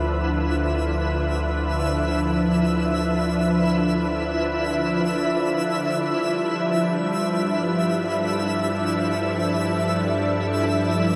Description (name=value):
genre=ambient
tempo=free time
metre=none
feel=none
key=D dorian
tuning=A4 = 439 Hz
part: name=soft additive organ-like pad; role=sustained chords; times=0.0-11.2 s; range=D3 to E5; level=-24 LUFS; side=equal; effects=ensemble chorus, built-in reverb
part: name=deep rumbling drone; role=bass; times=0.0-11.2 s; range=D2 to G2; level=-31 LUFS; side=equal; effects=built-in reverb
part: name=twinkling granular texture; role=texture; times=0.0-11.2 s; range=E4 to E5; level=-29 LUFS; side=equal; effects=built-in reverb
room=wet shimmer reverb, RT60 8.7 s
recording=none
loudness=-23 LUFS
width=mono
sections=0.0-11.2 A section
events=none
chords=0.0 Dm69; 6.0 G13